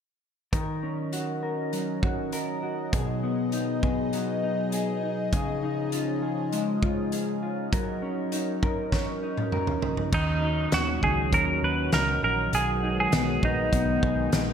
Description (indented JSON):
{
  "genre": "dream pop",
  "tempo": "100 BPM",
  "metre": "4/4",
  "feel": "straight",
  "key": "unclear",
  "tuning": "A4 = 441 Hz",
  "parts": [
    { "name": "phased analog pad", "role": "sustained chords", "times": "0.5-14.5 s", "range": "A#2 to D#5", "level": "-31 LUFS", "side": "right 1 dB", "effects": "phaser, chorus" },
    { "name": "mellow electric guitar", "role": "arpeggios", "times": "0.5-14.5 s", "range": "B2 to A#4", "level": "-30 LUFS", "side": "left 2 dB", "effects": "lush chorus, ping-pong delay" },
    { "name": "loose indie drum kit", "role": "drums", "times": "0.5-14.5 s", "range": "crash cymbal, hi-hat, kick drum, snare drum, toms", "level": "-29 LUFS", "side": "equal", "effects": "gated reverb" },
    { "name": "clean lap steel guitar", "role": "melody", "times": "10.1-14.3 s", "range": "D#4 to B4", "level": "-26 LUFS", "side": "right 1 dB", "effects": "ping-pong delay" },
    { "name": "vintage muted fingered electric bass", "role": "bass", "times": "10.1-14.5 s", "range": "A#1 to D#2", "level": "-30 LUFS", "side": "right 1 dB", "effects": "none" }
  ],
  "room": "wet plate reverb, RT60 1.6 s, studio reverb",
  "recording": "bright 1980s-style digital production",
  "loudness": "-24 LUFS",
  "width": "side -8 dB against mid",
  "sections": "0.5-10.1 A section; 10.1-14.5 B section",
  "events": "drum fill 8.9-10.1",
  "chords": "0.5 D#m7; 2.9 B6; 5.3 C#add9; 7.7 F#6; 10.1 D#m7; 12.5 B6"
}